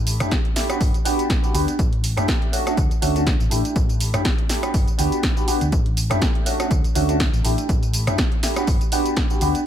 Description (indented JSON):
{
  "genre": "filtered disco house",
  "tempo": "122 BPM",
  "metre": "4/4",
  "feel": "swing 55% on 16ths",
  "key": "A mixolydian",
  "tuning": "A4 = 441 Hz",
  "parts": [
    { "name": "warm grand piano", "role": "accompaniment", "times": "0.0-9.6 s", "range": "A3 to G4", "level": "-24 LUFS", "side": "right 1 dB", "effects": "phaser, sidechain pumping" },
    { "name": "hollow-body short-scale fingered electric bass", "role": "bass", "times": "0.0-9.5 s", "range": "G1 to F#2", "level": "-24 LUFS", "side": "equal", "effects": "sidechain pumping" },
    { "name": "punchy analog drum machine", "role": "drums", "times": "0.1-9.6 s", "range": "hi-hat, rim click, snare drum, tambourine", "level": "-26 LUFS", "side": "right 1 dB", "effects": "sidechain pumping on hats, sidechain pumping on perc, sidechain pumping on cymbals" },
    { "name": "electronic kick drum", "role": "drums", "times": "0.3-9.3 s", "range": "none", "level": "-21 LUFS", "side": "equal", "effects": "none" }
  ],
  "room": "little or no reverb",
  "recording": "none",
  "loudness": "-18 LUFS",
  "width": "side -10 dB against mid",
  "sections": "0.0-9.7 A section",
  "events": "none",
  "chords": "0.0 A7sus4; 0.8 Gmaj7; 1.8 A7sus4; 2.5 Dmaj7; 3.5 A7sus4; 4.7 Gmaj7; 5.7 A7sus4; 6.5 Dmaj7; 7.4 A7sus4; 8.7 Gmaj7",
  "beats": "0.32 0.81 1.30 | 1.79 2.28 2.77 3.27 | 3.76 4.25 4.74 5.23 | 5.72 6.22 6.71 7.20 | 7.69 8.18 8.68 9.17"
}